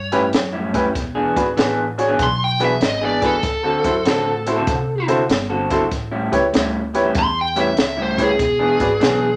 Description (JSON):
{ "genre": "electric blues shuffle", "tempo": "97 BPM", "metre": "4/4", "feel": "swing 66% on 8ths", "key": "unclear", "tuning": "A4 = 440 Hz", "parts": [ { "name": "overdriven electric guitar", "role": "melody", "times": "0.0-9.4 s", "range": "G#4 to C6", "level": "-23 LUFS", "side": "equal", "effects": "none" }, { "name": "upright bass", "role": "bass", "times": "0.0-9.4 s", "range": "E1 to C3", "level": "-30 LUFS", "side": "equal", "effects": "none" }, { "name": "clear baby grand piano", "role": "accompaniment", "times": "0.1-8.9 s", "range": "C#4 to D5", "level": "-23 LUFS", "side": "equal", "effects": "none" }, { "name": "electric guitar through a small old amp", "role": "riff", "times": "0.1-9.3 s", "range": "A2 to A4", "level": "-24 LUFS", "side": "equal", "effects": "none" }, { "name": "compact cocktail drum kit", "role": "drums", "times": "0.1-9.2 s", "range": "hi-hat, kick drum, snare drum", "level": "-24 LUFS", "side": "equal", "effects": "none" } ], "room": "moderate studio reverb, RT60 0.7 s", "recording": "none", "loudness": "-19 LUFS", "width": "mono", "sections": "0.0-9.4 A section", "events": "none", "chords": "0.0 A7; 0.9 E7; 3.4 D7; 5.9 A7; 8.4 E7", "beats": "0.33 | 0.95 1.57 2.19 2.81 | 3.43 4.05 4.67 5.29 | 5.91 6.53 7.15 7.77 | 8.39 9.01" }